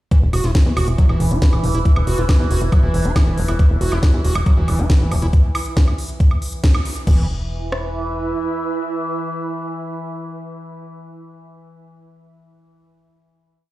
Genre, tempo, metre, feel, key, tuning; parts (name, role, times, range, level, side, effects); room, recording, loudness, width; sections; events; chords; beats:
psychedelic trance; 138 BPM; 4/4; straight; A4 = 439 Hz
overtone-sweeping drone; sustained chords; 0.5-10.2 s; E3; -30 LUFS; equal; chorus, built-in reverb, sidechain pumping
overdriven acid bass; riff; 0.1-7.3 s; E3 to F#4; -25 LUFS; equal; distortion, auto-pan, cassette tape, sidechain pumping, tape echo
garage drum kit; drums; 0.1-7.8 s; kick drum, rim click; -14 LUFS; equal; overdrive
techno drum kit; drums; 0.1-7.2 s; crash cymbal, hi-hat, snare drum, woodblock; -27 LUFS; right 1 dB; overdrive
ethereal airy pad; texture; 0.9-10.3 s; E4 to E5; -29 LUFS; right 3 dB; ensemble chorus, built-in reverb, sidechain pumping
plucky analog bass; bass; 0.2-8.3 s; E1 to E2; -20 LUFS; equal
little or no reverb; played on a big sound system in a bare room, stone room reverb; -15 LUFS; side -17 dB against mid
0.1-7.1 groove; 7.1-10.5 final chord
band accent 6.6
0.1 E5
| 0.12 0.55 0.98 1.42 | 1.85 2.29 2.72 3.16 | 3.59 4.03 4.46 4.90 | 5.33 5.77 6.20 6.64 | 7.07 7.51 7.94 8.38 | 8.81 9.24 9.68 10.12